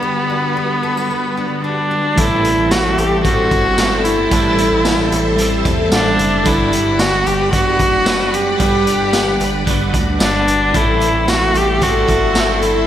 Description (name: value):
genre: dream pop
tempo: 112 BPM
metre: 4/4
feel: straight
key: A dorian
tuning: A4 = 441 Hz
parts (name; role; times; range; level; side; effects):
- clear viola; melody; 0.0-12.9 s; B3 to G4; -16 LUFS; equal; digital delay
- string machine, full ensemble; sustained chords; 0.0-12.9 s; D3 to C6; -22 LUFS; equal; ensemble chorus
- picked twelve-string acoustic guitar; arpeggios; 0.0-12.9 s; A2 to B4; -22 LUFS; left 2 dB; ensemble chorus
- electric guitar at the edge of break-up; accompaniment; 2.2-12.9 s; A2 to B4; -22 LUFS; right 4 dB; tremolo, lush chorus
- chorused synth bass; bass; 2.2-12.8 s; F#1 to E2; -22 LUFS; equal; none
- raw garage drum kit; drums; 2.2-12.7 s; hi-hat, kick drum, snare drum, tambourine; -19 LUFS; equal; gated reverb
room: moderate lush hall reverb, RT60 1.9 s, studio reverb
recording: bright 1980s-style digital production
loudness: -13 LUFS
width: side -10 dB against mid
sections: 0.0-2.2 A section; 2.2-12.9 B section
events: none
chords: 0.0 Gmaj7; 2.2 Am7; 6.5 Gmaj7; 10.7 Am7